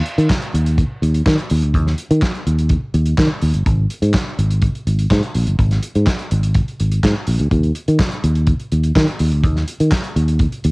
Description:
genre	disco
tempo	125 BPM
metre	4/4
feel	straight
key	unclear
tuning	A4 = 440 Hz
part	warm soul drum kit	drums	0.1-10.7 s	handclaps, hi-hat, kick drum, snare drum	-19 LUFS	equal	cassette tape
part	fingered electric bass	bass	0.2-10.7 s	G1 to Eb3	-15 LUFS	equal	none
room	little or no reverb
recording	home recording on cassette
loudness	-14 LUFS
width	side -29 dB against mid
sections	0.0-10.7 A section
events	none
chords	none

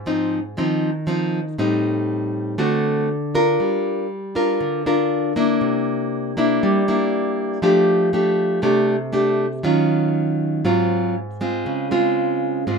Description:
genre	bossa nova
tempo	119 BPM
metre	4/4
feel	straight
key	C minor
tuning	A4 = 440 Hz
part	nylon-string guitar	solo	0.0-12.8 s	Ab2 to Bb4	-18 LUFS	equal	none
room	light reverb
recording	minimal, uncompressed stereo recording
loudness	-18 LUFS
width	side -5 dB against mid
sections	0.0-12.8 A section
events	none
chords	0.0 Ab6; 1.6 Am7b5; 2.6 D7; 3.6 Gm7; 5.6 C9; 7.6 F69; 9.6 Ebm9; 10.6 Ab6; 11.7 Dbmaj7

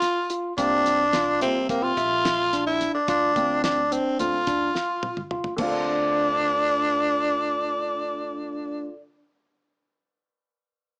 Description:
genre	progressive instrumental, band music in an uneven meter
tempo	216 BPM (eighths)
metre	9/8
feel	straight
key	D minor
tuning	A4 = 440 Hz
part	growling tenor saxophone	melody	0.0-8.8 s	Bb3 to F4	-25 LUFS	equal	plate reverb
part	overdriven tine electric piano	arpeggios	0.0-9.0 s	C4 to E5	-32 LUFS	equal	none
part	damped 70s drum kit	drums	0.0-5.7 s	crash cymbal, hi-hat, kick drum, snare drum, toms	-34 LUFS	equal	none
part	warm grand piano	accompaniment	0.6-8.9 s	C3 to E5	-35 LUFS	equal	none
part	upright bass	bass	0.6-8.9 s	Bb1 to D2	-44 LUFS	equal	none
room	moderate small room ambience, RT60 0.5 s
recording	small speaker sound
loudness	-24 LUFS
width	mono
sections	0.0-5.6 A section; 5.6-8.1 B section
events	drum fill 4.8-5.6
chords	0.0 N.C.; 0.6 C7sus4; 3.1 Dm7

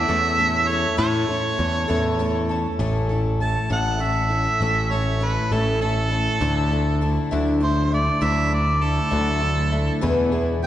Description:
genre	folk rock and heartland rock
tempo	66 BPM (dotted quarters)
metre	6/8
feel	straight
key	A major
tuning	A4 = 439 Hz
part	warm harmonica	melody	0.0-10.7 s	A4 to A5	-24 LUFS	right 2 dB	none
part	picked twelve-string acoustic guitar	accompaniment	0.0-10.7 s	E2 to A4	-24 LUFS	left 2 dB	none
part	modern bright picked electric bass	bass	0.0-10.7 s	A1 to A2	-22 LUFS	equal	none
room	wet church reverb, RT60 3.3 s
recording	recorded in a church or concert hall, nothing above 10.8 kHz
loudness	-19 LUFS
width	side -12 dB against mid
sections	0.0-2.8 A section; 2.8-10.7 B section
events	harmonica solo 2.8-10.7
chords	0.0 A; 6.4 Dadd9; 10.0 E

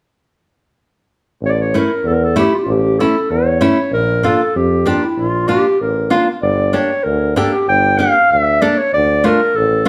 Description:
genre	klezmer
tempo	96 BPM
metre	2/4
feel	straight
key	A phrygian dominant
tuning	A4 = 440 Hz
part	warm tuba	bass	1.4-9.9 s	G1 to F2	-21 LUFS	equal	none
part	mellow clarinet	melody	1.5-9.9 s	E4 to G5	-17 LUFS	equal	none
part	nylon-string guitar	accompaniment	1.7-9.9 s	A3 to A4	-19 LUFS	equal	none
room	moderate large studio reverb, RT60 1.1 s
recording	band playing live in one room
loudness	-15 LUFS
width	mono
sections	1.4-9.9 A section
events	none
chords	1.4 A; 3.9 Bb; 6.4 Gm; 8.9 Dm

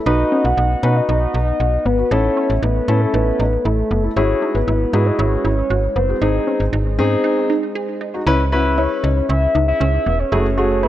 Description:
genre	pop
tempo	117 BPM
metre	4/4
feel	straight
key	C# minor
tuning	A4 = 436 Hz
part	glass harmonica	sustained chords	0.0-10.9 s	G#3 to F#5	-29 LUFS	equal	none
part	soft octave-layered synth lead	melody	0.1-10.9 s	A4 to F#5	-21 LUFS	left 1 dB	chorus, phaser, tape echo
part	warm concert grand piano	accompaniment	0.1-10.9 s	A3 to B4	-20 LUFS	left 1 dB	none
part	resonant blip pluck	arpeggios	0.1-10.9 s	B3 to G#4	-25 LUFS	right 1 dB	chorus, phaser, tape echo
part	slap-like FM bass	bass	0.1-10.9 s	E1 to B2	-18 LUFS	equal	none
room	light reverb, small room ambience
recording	dry, gritty hardware recording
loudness	-15 LUFS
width	side -13 dB against mid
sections	0.0-8.3 A section; 8.3-10.9 B section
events	break 7.2-8.3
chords	0.1 B; 2.1 A; 4.2 Eadd9/G#; 6.2 G#; 8.3 C#m7; 10.3 F#madd9

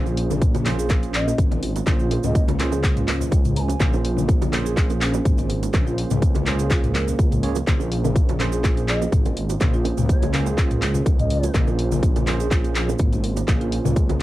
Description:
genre	afro house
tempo	124 BPM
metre	4/4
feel	swing 54% on 16ths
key	Bb minor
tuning	A4 = 440 Hz
part	bell-like tine electric piano	stabs	0.0-14.2 s	Bb3 to Db5	-30 LUFS	right 7 dB	medium stereo tremolo, vintage 12-bit sampler grit, sidechain pumping, cassette tape, tape echo
part	dark detuned saw bass	bass	0.0-14.2 s	Ab1 to Db2	-24 LUFS	equal	sidechain pumping
part	marimba with soft mallets	arpeggios	0.1-14.1 s	Bb3 to Bb4	-30 LUFS	equal	sidechain pumping, cassette tape, tape echo
part	bongos	percussion	0.1-14.2 s	none	-31 LUFS	right 8 dB	none
part	cabasa	percussion	0.1-14.2 s	none	-40 LUFS	right 10 dB	none
part	afro-pop drum kit	drums	0.2-14.2 s	handclaps, hi-hat, toms	-27 LUFS	equal	none
part	congas	percussion	0.3-14.2 s	none	-30 LUFS	left 7 dB	none
part	electronic kick drum	drums	0.4-14.1 s	none	-20 LUFS	equal	none
part	mellow bass bansuri	melody	1.1-3.9, 8.9-11.5 s	Db5 to Bb5	-31 LUFS	left 1 dB	vintage 12-bit sampler grit, tape echo
room	light reverb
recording	home recording on cassette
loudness	-18 LUFS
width	side -16 dB against mid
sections	0.0-14.2 A section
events	none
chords	0.0 Bbm7

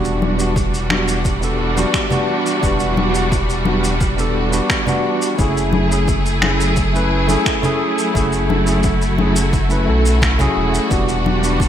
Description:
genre	sunset chillout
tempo	87 BPM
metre	4/4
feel	straight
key	E dorian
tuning	A4 = 439 Hz
part	barky tine electric piano	accompaniment	0.0-11.6 s	G3 to B4	-20 LUFS	right 1 dB	auto-pan, low-pass filter, digital delay
part	clear symphonic string section	sustained chords	0.0-11.7 s	E3 to G#4	-21 LUFS	right 1 dB	none
part	round analog bass	bass	0.0-11.7 s	E1 to B1	-20 LUFS	equal	none
part	shaker and finger snaps	drums	0.0-11.7 s	none	-24 LUFS	equal	gated reverb
part	congas	percussion	0.2-11.4 s	none	-24 LUFS	left 3 dB	none
part	electronic kick drum	drums	0.6-11.7 s	none	-22 LUFS	equal	overdrive
room	moderate lush hall reverb, RT60 1.6 s, studio reverb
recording	bright 1980s-style digital production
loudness	-14 LUFS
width	side -10 dB against mid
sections	0.0-11.7 A section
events	none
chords	0.0 Em9; 5.4 F#m9; 10.9 Em9

